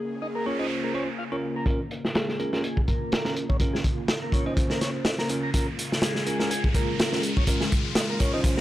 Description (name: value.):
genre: breakbeat, breaks.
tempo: 124 BPM.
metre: 4/4.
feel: swing 55% on 16ths.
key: Bb minor.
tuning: A4 = 438 Hz.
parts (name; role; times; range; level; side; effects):
phased analog pad; sustained chords; 0.0-8.6 s; Db3 to Ab4; -33 LUFS; left 1 dB; phaser, chorus, sidechain pumping.
noise sweep, riser and swell; sound effects; 0.1-8.6 s; none; -36 LUFS; equal; none.
tonewheel organ; riff; 0.2-8.6 s; Ab3 to Bb4; -33 LUFS; equal; slow rotary speaker, overdrive, low-pass filter, analog delay.
bell-like tine electric piano; stabs; 0.5-8.6 s; Db4 to C5; -31 LUFS; right 1 dB; vintage 12-bit sampler grit, analog delay.
crunchy breakbeat drum kit; drums; 1.7-8.6 s; hi-hat, kick drum, snare drum; -25 LUFS; equal; low-pass filter on kick, low-pass filter on hats, low-pass filter on snare, low-pass filter on room.
room: little or no reverb.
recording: dry, gritty hardware recording.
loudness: -23 LUFS.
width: side -14 dB against mid.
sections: 0.0-1.7 A section; 1.7-8.6 B section.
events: noise sweep 0.1-1.7; build-up 1.7-8.6; filter sweep on tonewheel organ 1.7-8.6; filter sweep on analog synth pad 1.7-8.6; riser 1.8-8.6; swell 8.4.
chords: 0.0 Bbm.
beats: 0.22 0.70 1.19 | 1.67 2.15 2.64 3.12 | 3.60 4.09 4.57 5.06 | 5.54 6.03 6.51 6.99 | 7.48 7.96 8.44.